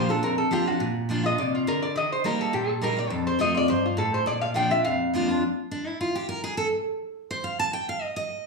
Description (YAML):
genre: bluegrass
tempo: 208 BPM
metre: 4/4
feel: straight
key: Bb major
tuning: A4 = 439 Hz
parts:
  - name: lap resonator guitar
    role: melody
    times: 0.0-5.1 s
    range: F4 to G5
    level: -25 LUFS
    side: equal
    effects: none
  - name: picked steel-string acoustic guitar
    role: accompaniment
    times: 0.0-8.5 s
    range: F2 to A5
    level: -26 LUFS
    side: equal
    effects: none
room: wet large studio reverb, RT60 0.9 s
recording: band playing live in one room, small room ambience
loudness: -23 LUFS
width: side -3 dB against mid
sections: 0.0-5.4 A section; 5.4-8.5 B section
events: steel-string acoustic guitar solo 5.4-8.5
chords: 0.0 Bb; 2.0 Eb; 3.1 F; 4.3 Bb; 5.4 N.C.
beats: 0.23 0.52 | 0.81 1.10 1.39 1.68 | 1.96 2.25 2.54 2.83 | 3.12 3.41 3.69 3.98 | 4.27 4.56 4.85 5.14 | 5.42 5.71 6.00 6.29 | 6.58 6.87 7.16 7.44 | 7.73 8.02 8.31